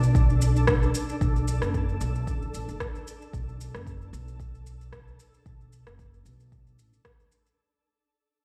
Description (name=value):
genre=organic downtempo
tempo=113 BPM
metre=4/4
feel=swing 55% on 16ths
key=B minor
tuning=A4 = 439 Hz
part: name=upright bass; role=bass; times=0.0-6.9 s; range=F#1 to B1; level=-29 LUFS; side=equal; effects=sidechain pumping
part: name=electronic shaker and rim click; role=drums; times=0.0-7.6 s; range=none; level=-33 LUFS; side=equal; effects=overdrive
part: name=twinkling granular texture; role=texture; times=0.0-7.6 s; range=D4 to A4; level=-37 LUFS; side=equal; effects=built-in reverb
part: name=electronic kick drum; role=drums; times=0.1-7.2 s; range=none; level=-29 LUFS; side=equal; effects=overdrive
room=light reverb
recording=played on a big sound system in a bare room, large studio reverb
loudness=-26 LUFS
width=mono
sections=0.0-7.6 A section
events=fade-out 0.0-7.6; filter sweep on upright bass 0.0-7.6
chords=0.0 Bm7